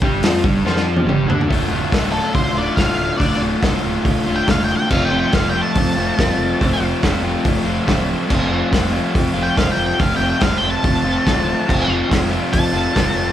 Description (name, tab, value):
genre	garage rock duo or trio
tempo	141 BPM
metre	4/4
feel	straight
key	unclear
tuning	A4 = 439 Hz
part	crunchy overdriven guitar	riff	0.0-13.3 s	D2 to F4	-19 LUFS	left 1 dB	none
part	fuzz fingered electric bass	bass	0.0-13.3 s	D1 to F2	-24 LUFS	equal	overdrive
part	vintage drum kit	drums	0.0-13.1 s	crash cymbal, hi-hat, kick drum, snare drum, toms	-19 LUFS	equal	none
part	octave-fuzz lead guitar	melody	2.1-6.8, 9.4-13.3 s	A4 to A5	-21 LUFS	left 1 dB	distortion
room	light reverb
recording	band playing live in one room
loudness	-15 LUFS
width	side -11 dB against mid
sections	0.0-1.5 A section; 1.5-13.3 B section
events	drum fill 0.7-1.5; lead electric guitar solo 1.5-13.3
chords	0.0 G5; 1.5 Dm; 4.9 F